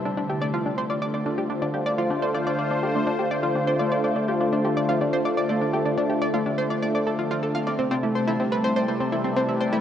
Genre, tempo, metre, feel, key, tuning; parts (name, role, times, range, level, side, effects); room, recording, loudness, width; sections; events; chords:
ambient, sequencer-driven space music; 124 BPM; 4/4; straight; D minor; A4 = 438 Hz
sweeping resonant pad; sustained chords; 0.0-9.8 s; C3 to C5; -25 LUFS; equal; chorus
Celtic harp; arpeggios; 0.0-9.8 s; A3 to D5; -29 LUFS; left 2 dB; auto-pan, analog delay
analog pluck; riff; 0.1-9.8 s; C4 to F5; -26 LUFS; equal; chorus, vintage 12-bit sampler grit, analog delay
wet huge ambient reverb, RT60 8.3 s; worn, warbling old tape, cassette tape, warbly pitch drift; -22 LUFS; side -9 dB against mid
0.0-9.8 A section
fade-in on harp 0.0-9.8
0.0 Dm7; 7.8 Cmaj7